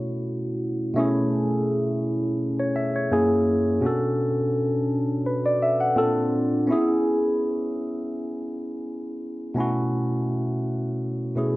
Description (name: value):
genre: soul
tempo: 84 BPM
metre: 4/4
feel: swing 54% on 16ths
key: B dorian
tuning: A4 = 441 Hz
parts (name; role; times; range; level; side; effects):
- barky tine electric piano; solo; 0.0-11.6 s; F#2 to F#5; -22 LUFS; equal; overdrive, phaser
room: moderate echo chamber reverb, RT60 1.9 s, digital ambience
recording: none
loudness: -22 LUFS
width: side -18 dB against mid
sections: 0.0-11.6 A section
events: none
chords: 0.0 B9sus4; 1.0 B13sus4; 3.1 F#7; 3.8 Bm7; 6.0 A#maj7; 6.7 E6/B; 9.6 B9sus4